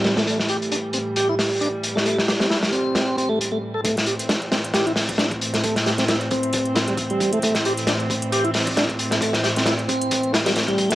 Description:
breakbeat, breaks; 134 BPM; 4/4; swing 56% on 16ths; A minor; A4 = 440 Hz
warm studio string section; sustained chords; 0.0-10.9 s; A2 to C4; -26 LUFS; right 1 dB; sidechain pumping, low-pass filter
tonewheel organ; riff; 0.0-10.9 s; G3 to A4; -23 LUFS; equal; overdrive, slow rotary speaker, tube saturation, low-pass filter, tape echo
crunchy breakbeat drum kit; drums; 0.0-10.9 s; hi-hat, kick drum, snare drum; -22 LUFS; equal; high-pass filter on kick, cassette tape, high-pass filter on hats, high-pass filter on snare, high-pass filter on room
electronic hi-hat; drums; 3.8-10.9 s; -34 LUFS; equal; overdrive, cassette tape
wet booth ambience, RT60 0.2 s; home recording on cassette; -19 LUFS; side -15 dB against mid
0.0-3.8 A section; 3.8-10.9 B section
build-up 3.8-10.9; filter sweep on tonewheel organ 3.8-10.9
0.0 Am

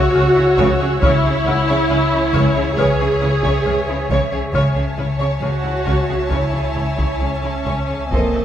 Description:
cinematic, suspense film score; 68 BPM; 4/4; straight; C# minor; A4 = 440 Hz
warm studio violin section; melody; 0.0-8.4 s; C#5 to Eb5; -28 LUFS; left 1 dB
rich studio violin section; second line; 0.0-8.4 s; E4 to C#5; -25 LUFS; left 1 dB
rich studio viola section; accompaniment; 0.0-8.4 s; C4 to G#4; -19 LUFS; equal
wind-like tuned noise texture; sustained chords; 0.0-8.4 s; C5 to C6; -30 LUFS; right 1 dB; built-in reverb
punchy sub bass; drone; 0.0-8.4 s; F1 to C#2; -27 LUFS; equal
felt-muted upright piano; texture; 0.0-8.4 s; A#3 to F#5; -26 LUFS; right 1 dB
rich studio violin section; texture; 0.0-8.4 s; G#5 to E6; -30 LUFS; left 3 dB
marimba with hard mallets; riff; 0.1-8.4 s; F2 to C#3; -24 LUFS; left 4 dB
dark studio double bass section; bass; 0.1-8.2 s; F1 to C#2; -24 LUFS; right 2 dB
rich studio cello section; bass; 0.2-8.4 s; F2 to C#3; -26 LUFS; right 4 dB
taiko ensemble; drums; 0.6-8.4 s; -24 LUFS; equal
moderate scoring stage reverb, RT60 1.8 s; -15 LUFS; side -10 dB against mid
0.0-8.4 A section
0.0 C#m

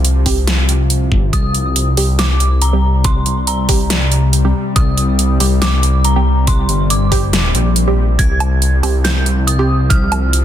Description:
deep dubstep; 140 BPM; 4/4; swing 54% on 16ths, half-time; C minor; A4 = 440 Hz
bowed-like drone; sustained chords; 0.0-10.4 s; C3 to G3; -22 LUFS; left 3 dB; built-in reverb
dark detuned saw bass; bass; 0.0-10.4 s; G1 to C2; -14 LUFS; equal
dubstep drum kit; drums; 0.0-10.4 s; hi-hat, snare drum, woodblock; -18 LUFS; right 1 dB; overdrive
filtered dub chord stab; stabs; 0.3-9.7 s; G3 to G4; -24 LUFS; right 4 dB; phaser, dub echo
electronic kick drum; drums; 0.3-10.0 s; -15 LUFS; equal; overdrive
dark detuned synth bell; melody; 1.3-10.4 s; Bb5 to Ab6; -22 LUFS; equal; chorus, dub echo
little or no reverb; dense, heavily limited modern master; -12 LUFS; side -11 dB against mid
0.0-10.4 A section
0.0 C5

